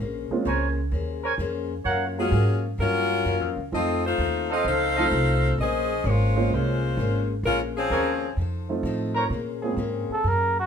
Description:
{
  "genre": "jazz, big band swing",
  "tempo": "129 BPM",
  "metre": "4/4",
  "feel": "swing 68% on 8ths",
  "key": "Bb minor",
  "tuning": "A4 = 441 Hz",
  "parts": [
    { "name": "picked steel-string acoustic guitar", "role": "accompaniment", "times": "0.0-10.6 s", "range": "F3 to C5", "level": "-32 LUFS", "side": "left 6 dB", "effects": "none" },
    { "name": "upright bass", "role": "bass", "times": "0.0-10.7 s", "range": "Ab1 to Bb2", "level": "-26 LUFS", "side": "right 1 dB", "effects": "none" },
    { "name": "warm grand piano", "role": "accompaniment", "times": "0.3-9.8 s", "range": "F3 to C5", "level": "-28 LUFS", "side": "right 3 dB", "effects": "none" },
    { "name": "dark trumpet section", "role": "stabs", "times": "0.5-5.1, 7.9-9.3 s", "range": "A4 to Bb5", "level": "-26 LUFS", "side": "right 3 dB", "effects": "none" },
    { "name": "edgy saxophone section", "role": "melody", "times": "2.2-8.3 s", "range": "F3 to F5", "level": "-24 LUFS", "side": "left 3 dB", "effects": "none" },
    { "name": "brilliant trombone section", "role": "sustained chords", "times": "9.6-10.2 s", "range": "Db3 to Ab4", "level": "-33 LUFS", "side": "right 1 dB", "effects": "none" },
    { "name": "trumpet with cup mute", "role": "melody", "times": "10.1-10.7 s", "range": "Gb4 to Bb4", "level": "-23 LUFS", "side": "right 2 dB", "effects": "none" }
  ],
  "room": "light reverb",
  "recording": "minimal, uncompressed stereo recording",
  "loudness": "-22 LUFS",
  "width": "side -7 dB against mid",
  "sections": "0.0-9.3 A section; 9.3-10.7 B section",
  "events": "muted trumpet solo 9.3-10.7",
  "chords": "0.0 Bbm9; 1.9 Gbmaj7; 3.7 F7; 5.6 Bbm9; 8.4 F7; 9.3 Bbm9"
}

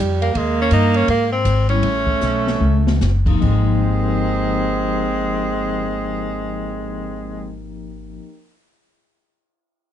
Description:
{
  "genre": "jazz, small-group swing and bop",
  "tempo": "142-167 BPM",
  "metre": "4/4",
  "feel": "swing 63% on 8ths",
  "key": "Ab major",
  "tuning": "A4 = 440 Hz",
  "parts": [
    { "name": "breathy alto saxophone", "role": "second line", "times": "0.0-7.6 s", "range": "G3 to C4", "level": "-23 LUFS", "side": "right 4 dB", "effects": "none" },
    { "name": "upright bass", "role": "bass", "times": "0.0-8.2 s", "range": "Gb1 to Ab2", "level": "-21 LUFS", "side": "equal", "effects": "none" },
    { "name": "open jazz drum kit", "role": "drums", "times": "0.0-6.7 s", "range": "crash cymbal, cymbal swell, hi-hat, kick drum, ride cymbal, snare drum, toms", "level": "-24 LUFS", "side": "left 1 dB", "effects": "none" },
    { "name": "warm tenor saxophone", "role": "melody", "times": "0.2-7.6 s", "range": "Ab3 to Eb4", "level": "-22 LUFS", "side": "equal", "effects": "none" },
    { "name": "vibraphone with medium hard mallets", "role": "accompaniment", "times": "1.7-8.4 s", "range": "F3 to Bb5", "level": "-25 LUFS", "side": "left 5 dB", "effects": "none" }
  ],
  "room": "light reverb",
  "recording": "dark, warm production, nothing above 10.4 kHz",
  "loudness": "-16 LUFS",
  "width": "side -10 dB against mid",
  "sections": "0.0-3.4 A section; 3.4-6.8 B section",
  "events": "slowing down 0.4-3.4; drum fill 2.2-3.0",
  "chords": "0.4 Eb7sus4; 1.8 Aadd9; 3.4 Ab69"
}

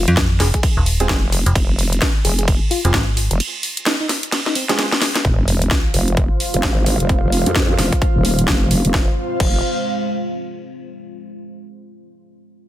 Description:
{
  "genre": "bass house",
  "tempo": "130 BPM",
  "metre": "4/4",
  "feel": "swing 60% on 16ths",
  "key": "F minor",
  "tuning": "A4 = 440 Hz",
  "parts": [
    { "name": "bell-like FM electric piano", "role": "melody", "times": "0.0-4.8 s", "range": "C4 to Ab4", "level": "-26 LUFS", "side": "left 2 dB", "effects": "chorus, cassette tape, ping-pong delay" },
    { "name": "vowel-sweep wobble bass", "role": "bass", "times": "0.0-9.6 s", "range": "Eb1 to F2", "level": "-18 LUFS", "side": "equal", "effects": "chorus, overdrive, sidechain pumping" },
    { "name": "metallic FM bass", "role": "bass", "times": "0.1-3.3 s", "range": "Eb1 to F2", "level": "-16 LUFS", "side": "equal", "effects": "tube saturation, sidechain pumping" },
    { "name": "garage drum kit", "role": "drums", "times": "0.1-9.5 s", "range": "crash cymbal, hi-hat, ride cymbal, snare drum", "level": "-21 LUFS", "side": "equal", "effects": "none" },
    { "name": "electronic kick drum", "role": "drums", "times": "0.2-9.5 s", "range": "none", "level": "-18 LUFS", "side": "equal", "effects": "overdrive" },
    { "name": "dark baby grand piano", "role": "stabs", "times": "1.0-4.9 s", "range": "Ab3 to Ab4", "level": "-26 LUFS", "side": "right 3 dB", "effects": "sidechain pumping, ping-pong delay" },
    { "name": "deep dark ambient pad", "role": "sustained chords", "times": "6.4-9.2 s", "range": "Ab3 to C5", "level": "-29 LUFS", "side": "right 1 dB", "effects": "chorus, built-in reverb, sidechain pumping" },
    { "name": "sub drop", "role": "sound effects", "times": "5.2-7.1 s", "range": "none", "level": "-26 LUFS", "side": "equal", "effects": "none" },
    { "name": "airy breathy pad", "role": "texture", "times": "5.2-10.7 s", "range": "F4 to F5", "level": "-25 LUFS", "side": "equal", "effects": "chorus, sidechain pumping" }
  ],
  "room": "little or no reverb",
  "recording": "none",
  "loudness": "-15 LUFS",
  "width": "side -13 dB against mid",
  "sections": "0.0-5.2 A section; 5.2-8.9 B section; 8.9-10.8 C section",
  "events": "drop 0.0-5.2; drum fill 4.3-5.2; impact 5.2-7.1; filter sweep on wobble bass 5.2-8.9",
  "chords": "0.0 Fm"
}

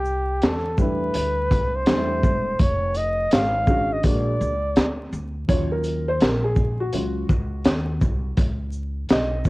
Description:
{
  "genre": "hip hop, jazz-hop",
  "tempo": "83 BPM",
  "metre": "4/4",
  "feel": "swing 63% on 16ths",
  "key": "unclear",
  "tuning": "A4 = 440 Hz",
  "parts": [
    { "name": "breathy flugelhorn", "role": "melody", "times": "0.0-5.1 s", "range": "G4 to F5", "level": "-24 LUFS", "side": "equal", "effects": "cassette tape" },
    { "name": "upright bass", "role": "bass", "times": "0.0-9.5 s", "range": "E1 to E2", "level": "-27 LUFS", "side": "equal", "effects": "none" },
    { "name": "crunchy breakbeat drum kit", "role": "drums", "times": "0.1-9.5 s", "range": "hi-hat, kick drum, shaker, snare drum", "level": "-20 LUFS", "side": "equal", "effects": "cassette tape" },
    { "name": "dark upright piano", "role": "accompaniment", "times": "0.8-9.5 s", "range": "F3 to Eb5", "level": "-27 LUFS", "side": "equal", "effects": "cassette tape" }
  ],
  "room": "little or no reverb",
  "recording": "home recording on cassette, vinyl crackle",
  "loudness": "-20 LUFS",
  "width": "side -22 dB against mid",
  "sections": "0.0-5.5 A section; 5.5-9.5 B section",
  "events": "upright piano solo 5.5-9.5",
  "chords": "0.0 C6; 2.6 Ebm11/F; 4.0 Bb7alt; 5.5 Ebm9; 8.4 Db7(no3)"
}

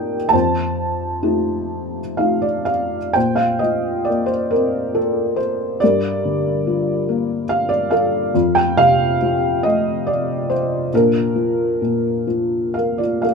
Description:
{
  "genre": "classical, lyrical solo piano",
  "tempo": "60-73 BPM",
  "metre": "3/4",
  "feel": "rubato",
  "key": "Bb major",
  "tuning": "A4 = 440 Hz",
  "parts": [
    { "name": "felt-muted upright piano", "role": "solo", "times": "0.0-13.3 s", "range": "F2 to A5", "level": "-16 LUFS", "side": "equal", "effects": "none" }
  ],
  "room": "moderate studio reverb, RT60 0.7 s",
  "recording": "none",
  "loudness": "-16 LUFS",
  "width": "side -5 dB against mid",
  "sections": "0.0-3.2 A section; 3.2-13.3 B section",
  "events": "none",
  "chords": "0.3 F9; 3.2 Bbsus2; 5.8 Gm7; 8.3 F; 10.9 Bb"
}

